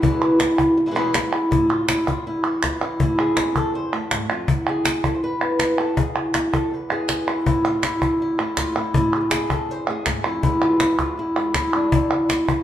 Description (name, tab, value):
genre	flamenco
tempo	161 BPM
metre	4/4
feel	straight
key	unclear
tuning	A4 = 439 Hz
part	flamenco guitar	melody	0.0-12.6 s	E2 to C5	-20 LUFS	equal	none
part	cajon	percussion	0.0-12.6 s	none	-24 LUFS	left 2 dB	none
part	palmas hand claps	percussion	0.2-12.6 s	none	-25 LUFS	right 3 dB	none
room	wet large studio reverb, RT60 1.1 s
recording	band playing live in one room, lossy compression artefacts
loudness	-18 LUFS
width	side -11 dB against mid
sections	0.0-1.5 A section; 1.5-12.6 B section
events	none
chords	0.0 E; 1.5 Am; 4.5 E; 7.5 Am; 10.4 E